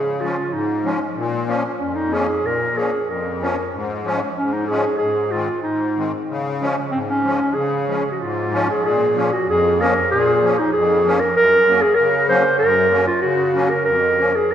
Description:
alpine folk; 94 BPM; 2/4; straight; Db major, Bb minor from 8.8 s; A4 = 443 Hz
mellow clarinet; melody; 0.0-14.5 s; C4 to C5; -18 LUFS; right 1 dB
musette accordion; accompaniment; 0.0-14.5 s; F2 to Db4; -21 LUFS; left 2 dB
wet concert hall reverb, RT60 2.2 s; recorded in a church or concert hall; -16 LUFS; side -10 dB against mid
0.0-8.8 A section; 8.8-14.5 B section
0.0 Db; 1.2 Bbm; 3.7 Db/Ab; 5.0 Ab; 6.3 Db; 8.8 Bbm; 11.4 Gb; 13.9 Bbm/F

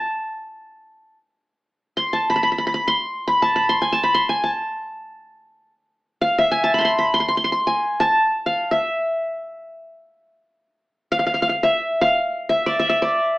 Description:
Arabic maqam ensemble; free time; A maqam nahawand; A4 = 440 Hz
qanun; solo; 0.0-13.4 s; D5 to C6; -18 LUFS; equal
moderate studio reverb, RT60 0.6 s; band playing live in one room, AM radio sound; -18 LUFS; side -20 dB against mid
0.0-13.4 A section

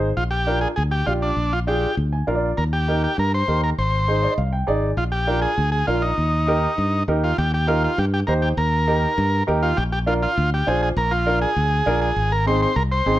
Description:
latin, cumbia; 200 BPM; 4/4; straight; Eb major; A4 = 441 Hz
warm upright piano; accompaniment; 0.0-13.2 s; C4 to Ab5; -23 LUFS; right 1 dB
fingered electric bass; bass; 0.0-13.2 s; Ab1 to G2; -22 LUFS; equal
overdriven combo organ; melody; 0.2-13.2 s; D4 to C5; -22 LUFS; equal
light reverb; -18 LUFS; side -14 dB against mid
0.0-7.4 A section; 7.4-13.2 B section
upright piano fill 2.0-2.6, 4.1-5.0
0.2 Bb7; 2.6 Eb; 3.8 Ab; 5.0 Bb7; 6.2 Eb; 9.8 Bb7; 12.2 Ab

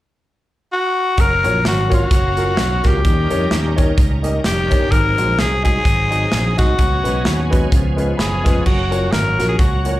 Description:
uptempo gospel; 128 BPM; 4/4; swing 57% on 8ths; F# major; A4 = 440 Hz
raspy tenor saxophone; melody; 0.7-10.0 s; F#4 to A#4; -19 LUFS; left 2 dB; slapback echo
bright tonewheel organ; sustained chords; 1.2-10.0 s; E#3 to E#5; -26 LUFS; right 2 dB; slow rotary speaker, overdrive, chorus vibrato
fingered electric bass; bass; 1.2-10.0 s; E#1 to E#2; -20 LUFS; equal
modern studio drum kit; drums; 1.2-9.9 s; crash cymbal, hi-hat, kick drum, snare drum; -18 LUFS; equal
warm upright piano; accompaniment; 1.4-10.0 s; G#2 to B5; -24 LUFS; left 1 dB; slapback echo
light reverb; live gig heard through the venue's PA, club ambience; -14 LUFS; side -15 dB against mid
0.0-1.2 A section; 1.2-8.7 B section; 8.7-10.0 C section
upright piano fill 8.0-8.7
0.0 N.C.; 1.2 F#maj7; 3.0 D#7; 4.9 G#7; 6.8 C#7sus4; 7.7 C#7; 8.7 F#maj7

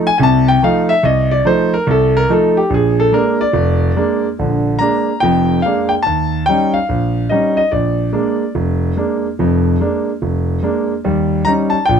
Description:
solo jazz; 144 BPM; 4/4; swing 65% on 8ths; Bb major; A4 = 440 Hz
clear concert grand piano; solo; 0.0-12.0 s; F1 to Bb5; -12 LUFS; equal
little or no reverb; close, detailed microphones; -13 LUFS; side -7 dB against mid
0.0-4.4 A section; 4.4-12.0 B section
grand piano solo 0.0-4.4
0.0 F7; 2.7 Bb7; 6.0 Eb7; 7.7 Bb7; 11.0 Eb7

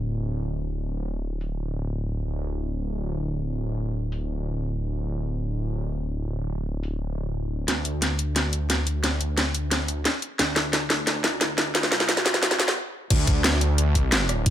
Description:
dark technical drum and bass; 177 BPM; 4/4; straight; A4 = 440 Hz
wide detuned saw bass; bass; 0.0-14.4 s; D1 to D2; -26 LUFS; equal; chorus, tube saturation
drum and bass drum kit; drums; 1.4-1.5, 4.1-4.2, 6.8-14.5 s; crash cymbal, hi-hat, rim click, snare drum; -22 LUFS; equal; low-pass filter on hats, low-pass filter on snare, low-pass filter on cymbals, low-pass filter on room
electronic kick drum; drums; 13.1-14.5 s; -21 LUFS; equal
little or no reverb; high-pass filter; -23 LUFS; side -11 dB against mid
0.0-7.7 A section; 7.7-13.1 B section; 13.1-14.5 C section
build-up 7.7-13.1; drum fill 7.7-12.8; stop 12.8-13.1; drop 13.1-14.5

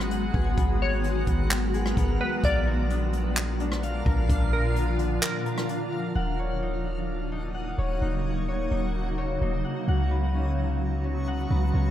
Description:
hip hop, atmospheric cloud-rap; 129 BPM; 4/4; half-time; Eb minor; A4 = 439 Hz
glassy wavetable pluck; melody; 0.0-5.7 s; Bb4 to D5; -32 LUFS; equal; chorus, diffuse ambient delay
granular cloud pad; sustained chords; 0.0-11.9 s; Bb2 to Gb4; -30 LUFS; equal; built-in reverb, wide subtle chorus, sidechain pumping
concert harp; arpeggios; 0.0-11.9 s; Cb4 to Gb5; -35 LUFS; left 4 dB; diffuse ambient delay
warm 808-style bass; bass; 0.0-11.9 s; Eb1 to Db2; -27 LUFS; equal
jazz brush drum kit; drums; 0.0-5.8 s; handclaps, hi-hat, kick drum, rim click; -28 LUFS; equal
backwards swelling texture; texture; 0.0-11.9 s; Cb4 to Eb6; -38 LUFS; right 1 dB; built-in reverb, lush chorus
light reverb, small room ambience; -24 LUFS; side -11 dB against mid
0.0-6.2 A section; 6.2-11.9 B section
break 5.2-6.2
0.0 Abm7; 2.4 Bb; 6.2 Ebm7; 9.9 Db7sus4

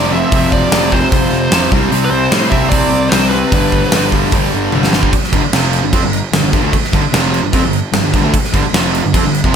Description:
hard rock; 150 BPM; 4/4; straight; A4 = 440 Hz
bluesy overdriven lead guitar; melody; 0.0-4.1 s; B4 to E5; -18 LUFS; equal; distortion, analog delay
overdriven electric guitar; riff; 0.0-9.6 s; F2 to C4; -17 LUFS; right 12 dB
sludgy distorted guitar; riff; 0.0-9.6 s; F2 to C4; -18 LUFS; left 11 dB; overdrive
fuzz picked electric bass; bass; 0.0-9.6 s; F1 to A2; -19 LUFS; equal; overdrive
gated 80s drum kit; drums; 0.3-9.5 s; crash cymbal, hi-hat, kick drum, snare drum, toms; -15 LUFS; equal
light reverb, small room ambience; -11 LUFS; side -7 dB against mid
0.0-5.1 A section; 5.1-9.6 B section
drum fill 4.7-5.1
0.0 F5; 1.7 C5; 3.5 G; 5.1 G5

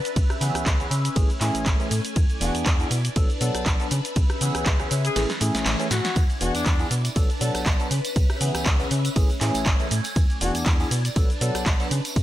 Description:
filtered disco house; 120 BPM; 4/4; swing 55% on 16ths; B dorian; A4 = 437 Hz
phased string machine; sustained chords; 0.0-12.2 s; A3 to A5; -32 LUFS; left 2 dB; ensemble chorus, phaser, sidechain pumping
punchy analog drum machine; drums; 0.1-12.2 s; cabasa, handclaps, hi-hat, ride cymbal, rim click, snare drum; -28 LUFS; right 1 dB; sidechain pumping on hats, sidechain pumping on perc, sidechain pumping on cymbals
slap-like FM bass; bass; 0.2-12.2 s; E1 to C#3; -26 LUFS; equal; sidechain pumping
electronic kick drum; drums; 0.2-12.2 s; -21 LUFS; equal; overdrive
barky tine electric piano; accompaniment; 0.4-11.9 s; E3 to A4; -29 LUFS; equal; overdrive, phaser, sidechain pumping
clear horn section; melody; 2.4-7.0, 10.4-10.5 s; D4 to G#4; -31 LUFS; left 3 dB; sidechain pumping
tambourine; percussion; 6.2-12.2 s; -38 LUFS; right 3 dB; sidechain pumping on perc
digital ambience; -20 LUFS; side -14 dB against mid
0.0-12.2 A section
kick drops out 5.2-6.2; drum fill 5.2-6.2
0.0 C#m7; 1.2 Amaj7; 2.2 E7; 2.9 Bm7; 3.9 C#m7; 5.2 Amaj7; 6.2 E7; 6.9 Bm7; 7.9 C#m7; 9.2 Amaj7; 10.2 E7; 10.9 Bm7

